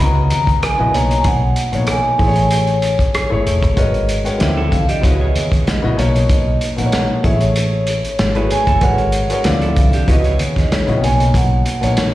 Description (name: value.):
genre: lush 1970s-style soul.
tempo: 95 BPM.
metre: 4/4.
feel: swing 54% on 16ths.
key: unclear.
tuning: A4 = 440 Hz.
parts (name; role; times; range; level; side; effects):
vibraphone with medium mallets; melody; 0.0-12.1 s; A#4 to A#5; -20 LUFS; right 1 dB; plate reverb, slapback echo.
warm concert grand piano; accompaniment; 0.0-12.1 s; B2 to E5; -20 LUFS; left 2 dB; plate reverb, slapback echo.
vintage muted fingered electric bass; bass; 0.0-12.0 s; E1 to D#2; -17 LUFS; equal; none.
vintage drum kit; drums; 0.3-12.1 s; hi-hat, kick drum, rim click, snare drum; -18 LUFS; equal; none.
vibraphone with medium hard mallets; texture; 2.5-3.2 s; G#5; -27 LUFS; right 2 dB; none.
electric guitar through a small old amp; riff; 4.6-11.0 s; D4 to C#5; -26 LUFS; right 3 dB; slapback echo.
room: moderate club reverb, RT60 0.5 s.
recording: live gig heard through the venue's PA, recital hall reverb.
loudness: -13 LUFS.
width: side -15 dB against mid.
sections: 0.0-12.1 A section.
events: none.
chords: 0.0 C#m11; 0.9 Bmaj9; 2.2 Amaj7; 3.8 G#m11; 4.4 Dm11; 5.0 C#m11; 6.0 Bmaj9; 7.2 Amaj7; 8.8 G#m11; 9.4 Dm11; 10.1 C#m11; 11.0 Bmaj9.